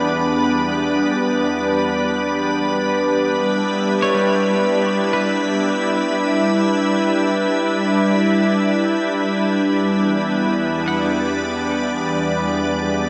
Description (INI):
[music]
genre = ambient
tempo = free time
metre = none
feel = none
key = E minor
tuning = A4 = 439 Hz
[part]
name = soft additive organ-like pad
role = sustained chords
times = 0.0-13.1 s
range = E2 to E5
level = -19 LUFS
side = equal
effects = ensemble chorus, built-in reverb
[part]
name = semi-hollow electric guitar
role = arpeggios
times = 0.0-13.1 s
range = G3 to F#5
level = -29 LUFS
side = equal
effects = none
[sound]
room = wet cathedral reverb, RT60 5.0 s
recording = in a vast, echoing space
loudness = -19 LUFS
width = mono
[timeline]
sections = 0.0-13.1 A section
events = none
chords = 0.0 G/E; 2.9 Em7; 9.5 G/E